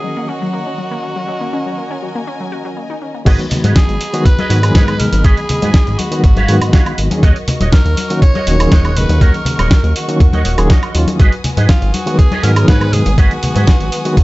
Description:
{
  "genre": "nu-disco, nu disco",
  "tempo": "121 BPM",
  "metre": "4/4",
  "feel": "straight",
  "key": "G# minor",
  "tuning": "A4 = 440 Hz",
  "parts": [
    { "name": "growling tenor saxophone", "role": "melody", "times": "0.0-14.2 s", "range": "E#4 to C#5", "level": "-23 LUFS", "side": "equal", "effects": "vintage 12-bit sampler grit, tape echo" },
    { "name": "barky reed electric piano", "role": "accompaniment", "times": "0.0-14.2 s", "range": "D#3 to G#4", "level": "-19 LUFS", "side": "equal", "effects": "tremolo" },
    { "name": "warm studio string section", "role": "sustained chords", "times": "0.0-14.2 s", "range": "C#4 to D#6", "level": "-26 LUFS", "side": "equal", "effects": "sidechain pumping" },
    { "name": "wide unison pluck", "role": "arpeggios", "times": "0.0-3.2 s", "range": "F#3 to F#4", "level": "-24 LUFS", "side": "left 2 dB", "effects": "vintage 12-bit sampler grit, sidechain pumping, tape echo" },
    { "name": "electric guitar with an envelope filter", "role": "riff", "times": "3.3-14.2 s", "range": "F#4 to F#5", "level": "-24 LUFS", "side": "right 4 dB", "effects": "ensemble chorus" },
    { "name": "chorused synth bass", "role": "bass", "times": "3.3-14.2 s", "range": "D#1 to G#2", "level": "-14 LUFS", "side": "equal", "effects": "tube saturation" },
    { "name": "dusty soul sampler-style drum kit", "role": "drums", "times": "3.3-14.2 s", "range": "crash cymbal, hi-hat, snare drum, woodblock", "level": "-20 LUFS", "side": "right 1 dB", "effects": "none" },
    { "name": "electronic kick drum", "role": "drums", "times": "3.3-14.2 s", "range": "none", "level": "-10 LUFS", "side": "equal", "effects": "none" },
    { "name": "congas", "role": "percussion", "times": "3.5-13.6 s", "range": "none", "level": "-22 LUFS", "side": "left 2 dB", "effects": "none" }
  ],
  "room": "little or no reverb",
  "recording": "nothing above 7.9 kHz",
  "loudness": "-10 LUFS",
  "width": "side -19 dB against mid",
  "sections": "0.0-3.3 A section; 3.3-14.2 B section",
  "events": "filter sweep on reed electric piano 0.0-3.3; filter sweep on synth arpeggio sound 0.0-3.3; drop 3.3-14.2",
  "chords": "0.0 F#6; 3.3 G#m7; 7.2 D#m7; 11.2 G#m7"
}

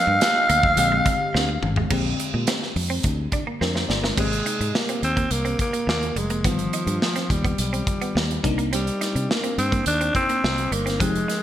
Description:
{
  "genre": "polished 1980s jazz-funk pop",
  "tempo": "106 BPM",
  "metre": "4/4",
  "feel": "straight",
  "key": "unclear",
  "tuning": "A4 = 444 Hz",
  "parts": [
    { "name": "breathy alto saxophone", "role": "melody", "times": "0.0-11.4 s", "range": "F3 to F5", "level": "-23 LUFS", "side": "equal", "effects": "none" },
    { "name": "bell-like FM electric piano", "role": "accompaniment", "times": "0.0-11.4 s", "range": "C3 to D5", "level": "-30 LUFS", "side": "left 4 dB", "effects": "wide subtle chorus" },
    { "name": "semi-hollow electric guitar", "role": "riff", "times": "0.0-11.4 s", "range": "G3 to Eb4", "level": "-32 LUFS", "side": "right 4 dB", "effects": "wide subtle chorus" },
    { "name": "fingered electric bass", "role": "bass", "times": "0.1-11.2 s", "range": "F1 to C3", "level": "-26 LUFS", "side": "equal", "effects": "none" },
    { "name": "modern studio drum kit", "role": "drums", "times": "0.2-11.4 s", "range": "crash cymbal, hi-hat, kick drum, snare drum, toms", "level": "-25 LUFS", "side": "equal", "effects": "gated reverb" }
  ],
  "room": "light reverb, studio ambience",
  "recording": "bright 1980s-style digital production",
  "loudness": "-20 LUFS",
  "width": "side -11 dB against mid",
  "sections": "0.0-1.9 A section; 1.9-4.2 B section; 4.2-11.4 C section",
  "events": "drum fill 1.3-1.9, 3.6-4.2",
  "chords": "0.0 Gm7; 0.8 Bb13; 4.2 Abmaj9; 6.4 Gaug7; 8.4 Cm9"
}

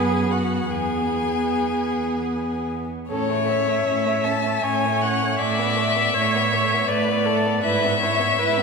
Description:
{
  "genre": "classical, slow romantic movement for string quartet",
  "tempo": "79 BPM",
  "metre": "3/4",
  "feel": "rubato",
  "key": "A major",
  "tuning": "A4 = 440 Hz",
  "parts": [
    { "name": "rich violin", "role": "melody", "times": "0.0-8.6 s", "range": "C#5 to A5", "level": "-23 LUFS", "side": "left 7 dB", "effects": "none" },
    { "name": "rich violin", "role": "second line", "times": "0.0-8.6 s", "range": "A3 to G#4", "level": "-28 LUFS", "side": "left 1 dB", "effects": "none" },
    { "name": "clear viola", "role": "accompaniment", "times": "0.0-8.6 s", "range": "B3 to E5", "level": "-24 LUFS", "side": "right 3 dB", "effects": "none" },
    { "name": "warm cello", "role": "bass", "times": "0.0-8.6 s", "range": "E2 to A2", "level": "-26 LUFS", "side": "right 5 dB", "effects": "none" }
  ],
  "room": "wet church reverb, RT60 3.3 s",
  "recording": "recorded in a church or concert hall",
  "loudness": "-19 LUFS",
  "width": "side -4 dB against mid",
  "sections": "0.0-3.1 A section; 3.1-8.6 B section",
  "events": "none",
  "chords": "0.0 B5/F#; 0.7 E; 3.1 A; 5.4 Bm7/A; 7.6 E/G#"
}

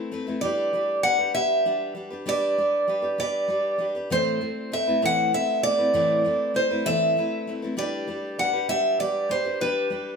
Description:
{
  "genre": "acoustic folk duo or small band",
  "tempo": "65 BPM (dotted quarters)",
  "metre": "6/8",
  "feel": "straight",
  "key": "unclear",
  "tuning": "A4 = 440 Hz",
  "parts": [
    { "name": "picked steel-string acoustic guitar", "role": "accompaniment", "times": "0.0-10.2 s", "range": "A2 to B4", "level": "-30 LUFS", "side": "left 3 dB", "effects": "none" },
    { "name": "picked acoustic archtop guitar", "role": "melody", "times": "0.4-10.2 s", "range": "B4 to F#5", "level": "-22 LUFS", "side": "right 1 dB", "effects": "none" }
  ],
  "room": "moderate studio reverb, RT60 0.6 s",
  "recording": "band playing live in one room",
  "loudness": "-22 LUFS",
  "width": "side -5 dB against mid",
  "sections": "0.0-10.2 A section",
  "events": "none",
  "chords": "0.4 G; 4.1 Amadd9; 7.8 G"
}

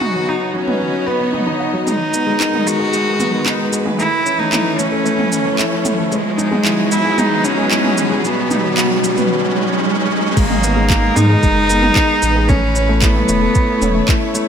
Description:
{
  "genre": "piano and strings electronica",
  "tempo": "113 BPM",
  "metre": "4/4",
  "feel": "straight",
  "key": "G# minor",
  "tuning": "A4 = 440 Hz",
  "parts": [
    { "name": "clear cello", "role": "melody", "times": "0.0-14.3 s", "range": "G#3 to F#4", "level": "-18 LUFS", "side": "right 1 dB", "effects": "ping-pong delay, shimmer reverb" },
    { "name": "clear studio string section", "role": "sustained chords", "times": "0.0-14.5 s", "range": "B2 to D#5", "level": "-23 LUFS", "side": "left 1 dB", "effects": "sidechain pumping, shimmer reverb" },
    { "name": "warm grand piano", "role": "riff", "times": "0.0-14.5 s", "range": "F#3 to F#5", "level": "-19 LUFS", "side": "left 1 dB", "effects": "ping-pong delay, shimmer reverb" },
    { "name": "warm sub bass", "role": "bass", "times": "0.0-14.0 s", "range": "E1 to G#2", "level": "-18 LUFS", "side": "equal", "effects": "sidechain pumping, high-pass filter" },
    { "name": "organic electronic drum kit", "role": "drums", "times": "0.0-14.5 s", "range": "crash cymbal, handclaps, shaker, toms", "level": "-21 LUFS", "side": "right 1 dB", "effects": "overdrive" },
    { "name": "riser", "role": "sound effects", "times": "0.0-10.4 s", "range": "none", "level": "-23 LUFS", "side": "right 1 dB", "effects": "none" },
    { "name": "electronic kick drum", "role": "drums", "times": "10.4-14.2 s", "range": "none", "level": "-16 LUFS", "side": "equal", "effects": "overdrive" }
  ],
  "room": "moderate lush hall reverb, RT60 2.1 s",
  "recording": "none",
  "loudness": "-13 LUFS",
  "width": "side -8 dB against mid",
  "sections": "0.0-10.4 A section; 10.4-14.5 B section",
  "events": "build-up 0.0-10.4; riser 0.0-10.4; drop 10.4-14.5",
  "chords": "0.0 B/D#; 1.9 G#madd9; 4.0 Aadd9; 6.1 Emaj7; 8.2 B/D#; 10.4 G#madd9; 12.5 Aadd9"
}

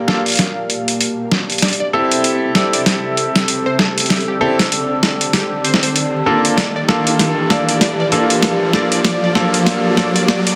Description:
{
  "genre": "glitch hop",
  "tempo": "97 BPM",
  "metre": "4/4",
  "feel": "swing 59% on 16ths",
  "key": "G dorian",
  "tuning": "A4 = 440 Hz",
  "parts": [
    { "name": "warm analog pad", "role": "sustained chords", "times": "0.0-10.6 s", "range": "Bb3 to F5", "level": "-26 LUFS", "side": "equal", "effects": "chorus, vintage 12-bit sampler grit" },
    { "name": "riser", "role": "sound effects", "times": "0.0-10.6 s", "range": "none", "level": "-25 LUFS", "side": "equal", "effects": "none" },
    { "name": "warbly tape-like pad", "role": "texture", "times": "0.0-10.6 s", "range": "G4 to E6", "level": "-27 LUFS", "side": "equal", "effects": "chorus, built-in reverb" },
    { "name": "plucky unison lead", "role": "melody", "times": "0.1-10.5 s", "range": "G4 to F5", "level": "-27 LUFS", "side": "equal", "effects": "subtle chorus, cassette tape, digital delay" },
    { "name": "bright concert grand piano", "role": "stabs", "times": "0.1-10.3 s", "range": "Bb3 to A4", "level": "-21 LUFS", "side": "equal", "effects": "vintage 12-bit sampler grit, digital delay" },
    { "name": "boom bap sampler-style drum kit", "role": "drums", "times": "0.1-10.6 s", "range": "hi-hat, snare drum", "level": "-18 LUFS", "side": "equal", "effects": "studio reverb" }
  ],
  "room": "moderate lush hall reverb, RT60 2.2 s",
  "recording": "dense, heavily limited modern master, vinyl crackle",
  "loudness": "-16 LUFS",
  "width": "mono",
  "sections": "0.0-10.6 A section",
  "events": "build-up 0.0-10.6; drum fill 0.0-10.6; riser 0.0-10.6",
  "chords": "0.0 Gm9; 1.6 Am7; 6.6 Gm9"
}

